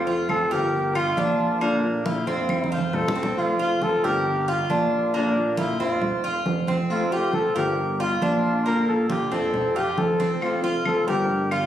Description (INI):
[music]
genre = latin, Cuban son and guajira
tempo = 136 BPM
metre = 4/4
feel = straight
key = F major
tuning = A4 = 437 Hz
[part]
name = trumpet with bucket mute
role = melody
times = 0.0-11.7 s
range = D4 to Bb4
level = -24 LUFS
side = equal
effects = none
[part]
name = nylon-string guitar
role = accompaniment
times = 0.0-11.3 s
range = C3 to G4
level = -28 LUFS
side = left 2 dB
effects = none
[part]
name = Cuban tres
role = arpeggios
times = 0.0-11.7 s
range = Bb3 to Bb4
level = -27 LUFS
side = right 2 dB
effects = none
[part]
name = fat analog bass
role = bass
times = 0.0-11.7 s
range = F1 to Bb1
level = -29 LUFS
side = equal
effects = none
[part]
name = congas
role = percussion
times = 0.1-11.7 s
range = none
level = -29 LUFS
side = right 2 dB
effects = none
[part]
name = claves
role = percussion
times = 0.3-2.7, 10.4-11.7 s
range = none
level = -32 LUFS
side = left 3 dB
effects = none
[part]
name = breathy bright jazz flute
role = second line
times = 2.7-3.4 s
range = A4 to C5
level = -29 LUFS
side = left 3 dB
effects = none
[sound]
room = moderate spring reverb, RT60 1.4 s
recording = recorded on a phone in the room, studio reverb, compression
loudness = -21 LUFS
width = side -11 dB against mid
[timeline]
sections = 0.0-3.4 A section; 3.4-11.7 A section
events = drum fill 2.5-3.4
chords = 0.0 F; 0.7 Gm7; 1.6 Bb; 2.5 F; 4.3 Gm7; 5.1 Bb; 6.0 F; 7.8 Gm7; 8.7 Bb; 9.5 F